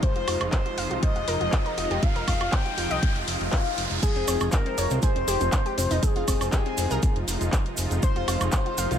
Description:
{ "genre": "progressive house", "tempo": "120 BPM", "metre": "4/4", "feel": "straight", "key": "F minor", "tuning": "A4 = 441 Hz", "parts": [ { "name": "expressive synth lead", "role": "melody", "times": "0.0-9.0 s", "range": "Ab4 to G5", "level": "-30 LUFS", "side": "left 2 dB", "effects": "lush chorus, sidechain pumping, ping-pong delay" }, { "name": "supersaw pad", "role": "sustained chords", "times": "0.0-9.0 s", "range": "C3 to F4", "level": "-33 LUFS", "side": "right 1 dB", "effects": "sidechain pumping" }, { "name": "analog pluck", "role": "arpeggios", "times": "0.0-9.0 s", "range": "C4 to F5", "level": "-32 LUFS", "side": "left 1 dB", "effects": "chorus, sidechain pumping, tape echo" }, { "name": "electronic kick drum", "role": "drums", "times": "0.0-8.6 s", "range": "none", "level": "-24 LUFS", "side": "equal", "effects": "small room ambience" }, { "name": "house drum kit", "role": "drums", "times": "0.0-9.0 s", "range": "crash cymbal, handclaps, hi-hat, woodblock", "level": "-32 LUFS", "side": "equal", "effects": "small room ambience" }, { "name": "riser and swell", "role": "sound effects", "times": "0.0-4.0 s", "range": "none", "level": "-34 LUFS", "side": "left 2 dB", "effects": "none" }, { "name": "fat analog bass", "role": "bass", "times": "0.2-9.0 s", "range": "F1 to C2", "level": "-29 LUFS", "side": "equal", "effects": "sidechain pumping" }, { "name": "tube shaker", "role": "percussion", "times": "4.0-9.0 s", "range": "none", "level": "-34 LUFS", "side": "right 6 dB", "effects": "none" } ], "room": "digital ambience", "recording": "none", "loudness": "-22 LUFS", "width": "side -9 dB against mid", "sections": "0.0-4.0 A section; 4.0-9.0 B section", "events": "build-up 0.0-4.0; riser 0.0-4.0; filter sweep on synth pluck 0.0-4.0; swell 3.0-4.0; drop 4.0-9.0", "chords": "0.0 Fm7" }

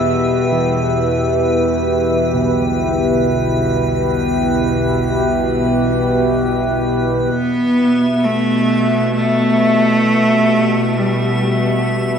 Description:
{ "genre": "dark ambient drone", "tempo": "free time", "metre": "none", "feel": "none", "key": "E minor", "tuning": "A4 = 439 Hz", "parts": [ { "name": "deep dark ambient pad", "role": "sustained chords", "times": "0.0-12.2 s", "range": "E4 to E5", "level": "-19 LUFS", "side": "equal", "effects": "chorus, built-in reverb" }, { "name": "bowed-like drone", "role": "drone", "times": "0.0-12.2 s", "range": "E2 to B2", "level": "-19 LUFS", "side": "equal", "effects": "built-in reverb" }, { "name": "icy glass pad", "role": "texture", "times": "0.0-12.2 s", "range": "B4 to E5", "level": "-23 LUFS", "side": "left 2 dB", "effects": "chorus, built-in reverb" }, { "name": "carillon bells", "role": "arpeggios", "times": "0.5-12.2 s", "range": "B2 to B3", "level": "-25 LUFS", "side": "right 2 dB", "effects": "dub echo" }, { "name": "rich cello", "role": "melody", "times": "7.3-11.9 s", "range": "G3 to B3", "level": "-15 LUFS", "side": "right 1 dB", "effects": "dub echo" } ], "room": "wet echo chamber reverb, RT60 2.2 s", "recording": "echo-heavy mix", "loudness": "-13 LUFS", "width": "side -7 dB against mid", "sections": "0.0-7.3 A section; 7.3-12.2 B section", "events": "fade-in on ambient pad 7.3-12.2", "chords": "0.0 E5" }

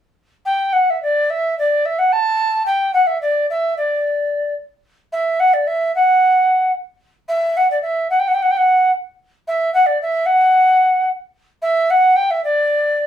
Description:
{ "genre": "medieval", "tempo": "110 BPM", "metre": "2/4", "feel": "straight", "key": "unclear", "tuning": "A4 = 440 Hz", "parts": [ { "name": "mellow tenor recorder", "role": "melody", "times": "0.5-13.1 s", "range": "D5 to A5", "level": "-14 LUFS", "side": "equal", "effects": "none" } ], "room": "moderate studio ambience, RT60 0.5 s", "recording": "band playing live in one room", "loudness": "-14 LUFS", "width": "side -10 dB against mid", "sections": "0.5-4.8 A section; 4.8-13.1 B section", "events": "none", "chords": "none" }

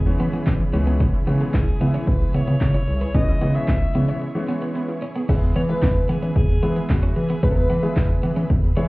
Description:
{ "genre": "dance-pop", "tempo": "112 BPM", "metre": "4/4", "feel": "straight", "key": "E major", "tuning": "A4 = 444 Hz", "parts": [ { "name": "breathy alto saxophone", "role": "melody", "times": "0.0-8.2 s", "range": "F#4 to E5", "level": "-30 LUFS", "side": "left 1 dB", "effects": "tape echo" }, { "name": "supersaw chords", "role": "sustained chords", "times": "0.0-8.9 s", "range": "E4 to C#6", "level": "-38 LUFS", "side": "right 1 dB", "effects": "sidechain pumping" }, { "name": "round analog bass", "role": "bass", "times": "0.0-8.9 s", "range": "C2 to E3", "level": "-21 LUFS", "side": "equal", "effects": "sidechain pumping" }, { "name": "clear baby grand piano", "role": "accompaniment", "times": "0.1-8.9 s", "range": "E3 to C#5", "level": "-27 LUFS", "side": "left 1 dB", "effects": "sidechain pumping" }, { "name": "house drum kit", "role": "drums", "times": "0.1-8.9 s", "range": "crash cymbal, handclaps, hi-hat, kick drum, shaker, snare drum", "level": "-21 LUFS", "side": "equal", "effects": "none" }, { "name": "wide unison pluck", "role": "arpeggios", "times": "0.2-5.3 s", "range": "G#3 to B5", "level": "-36 LUFS", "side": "right 2 dB", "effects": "sidechain pumping, tape echo" }, { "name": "twelve-string electric guitar", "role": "riff", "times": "0.2-8.8 s", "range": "B3 to C#4", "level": "-29 LUFS", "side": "right 2 dB", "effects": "lush chorus" }, { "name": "tambourine", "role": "percussion", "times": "5.8-8.1 s", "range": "none", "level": "-62 LUFS", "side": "right 4 dB", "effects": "none" } ], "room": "light reverb", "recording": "heard muffled through a wall, club reverb, vinyl crackle, EQ", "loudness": "-18 LUFS", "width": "side -21 dB against mid", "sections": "0.0-5.3 A section; 5.3-8.9 B section", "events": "break 4.2-5.3", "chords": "0.0 E; 0.7 C#m7; 5.3 E" }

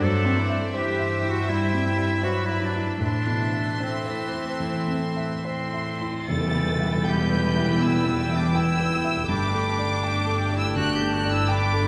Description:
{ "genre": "cinematic, emotional film score for orchestra", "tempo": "69-83 BPM", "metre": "4/4", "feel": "rubato", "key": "unclear", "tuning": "A4 = 441 Hz", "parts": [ { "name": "dark studio violin section", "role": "melody", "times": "0.0-11.9 s", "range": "C5 to A6", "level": "-34 LUFS", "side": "equal", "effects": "none" }, { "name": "bright clarinet", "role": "second line", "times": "0.0-11.9 s", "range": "C4 to A4", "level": "-33 LUFS", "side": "equal", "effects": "none" }, { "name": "rich studio violin section", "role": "second line", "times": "0.0-11.9 s", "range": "G4 to C6", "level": "-36 LUFS", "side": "equal", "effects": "none" }, { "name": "dark baby grand piano", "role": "accompaniment", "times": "0.0-11.9 s", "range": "E2 to G5", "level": "-31 LUFS", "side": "equal", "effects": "none" }, { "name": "warm studio viola section", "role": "accompaniment", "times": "0.0-11.9 s", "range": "E3 to D5", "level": "-33 LUFS", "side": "equal", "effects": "none" }, { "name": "mellow French horn section", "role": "sustained chords", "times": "0.0-11.9 s", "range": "G3 to A4", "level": "-37 LUFS", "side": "equal", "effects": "none" }, { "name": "warm studio cello section", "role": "bass", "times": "0.0-11.9 s", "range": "E2 to A2", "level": "-31 LUFS", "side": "equal", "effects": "none" }, { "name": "cymbal swell and tam-tam", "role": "percussion", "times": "3.0-9.2 s", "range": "none", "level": "-37 LUFS", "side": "equal", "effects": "none" }, { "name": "warm studio double bass section", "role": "bass", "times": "6.3-11.9 s", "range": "E1 to G1", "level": "-32 LUFS", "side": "equal", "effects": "none" }, { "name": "silver concert flute", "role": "second line", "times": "7.8-11.9 s", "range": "G5 to B5", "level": "-35 LUFS", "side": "equal", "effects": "none" } ], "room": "wet scoring stage reverb, RT60 1.6 s", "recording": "none", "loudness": "-24 LUFS", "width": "mono", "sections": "0.0-6.3 A section; 6.3-11.9 A section", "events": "band accent 6.3-7.1", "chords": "0.0 C/G; 3.0 Amadd9; 6.3 Em; 9.3 Gsus2" }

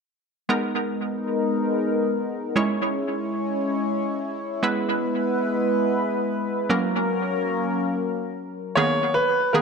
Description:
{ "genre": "pop", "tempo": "free time", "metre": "none", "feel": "none", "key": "G# minor", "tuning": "A4 = 441 Hz", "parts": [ { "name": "hollow square pluck", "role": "accompaniment", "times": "0.5-9.6 s", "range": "D#3 to C#5", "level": "-24 LUFS", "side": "right 2 dB", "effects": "chorus, tape echo" }, { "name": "chorused pulse-width pad", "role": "sustained chords", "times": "0.5-8.7 s", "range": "F#3 to C#5", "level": "-24 LUFS", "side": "left 1 dB", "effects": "none" }, { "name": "warm concert grand piano", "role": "melody", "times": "8.8-9.6 s", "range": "A#4 to C#5", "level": "-19 LUFS", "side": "equal", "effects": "tape echo" } ], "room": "wet spring reverb, RT60 1.3 s, small room ambience", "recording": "echo-heavy mix", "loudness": "-22 LUFS", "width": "side -5 dB against mid", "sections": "0.5-8.8 A section", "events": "none", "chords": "0.5 G#madd9; 2.6 C#m; 4.6 E; 6.7 F#; 8.8 G#madd9" }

